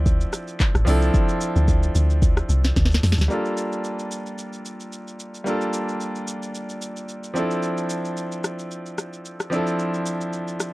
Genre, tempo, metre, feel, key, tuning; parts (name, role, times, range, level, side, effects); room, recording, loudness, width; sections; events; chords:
amapiano; 111 BPM; 4/4; swing 55% on 16ths; A4 = 440 Hz
bright concert grand piano; accompaniment; 0.0-10.7 s; F3 to A4; -26 LUFS; equal
deep log drum bass; bass; 0.0-3.3 s; A1 to F2; -19 LUFS; equal
afro-pop drum kit; drums; 0.1-10.7 s; handclaps, hi-hat, kick drum, rim click, shaker, snare drum; -23 LUFS; equal
little or no reverb; dark, warm production; -20 LUFS; side -20 dB against mid
0.0-3.3 A section; 3.3-10.7 B section
drop 0.0-3.3; drum fill 2.8-3.3
0.0 Dm9; 3.3 Gm9; 7.4 Dm9